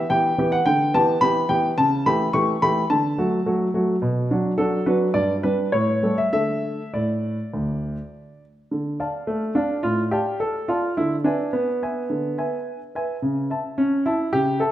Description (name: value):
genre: classical-period piano sonatina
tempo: 107 BPM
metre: 4/4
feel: rubato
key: D major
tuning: A4 = 440 Hz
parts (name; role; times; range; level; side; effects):
- warm grand piano; solo; 0.0-14.7 s; D2 to C#6; -20 LUFS; equal; none
room: wet recital hall reverb, RT60 1.4 s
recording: none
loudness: -20 LUFS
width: side -13 dB against mid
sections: 0.0-8.7 A section; 8.7-14.7 B section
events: none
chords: 0.0 Em7; 1.8 A7/C#; 2.9 D; 4.0 Bm; 5.1 G; 5.7 A7; 6.3 D5; 8.7 Dm; 11.0 E7/D; 13.2 A/C#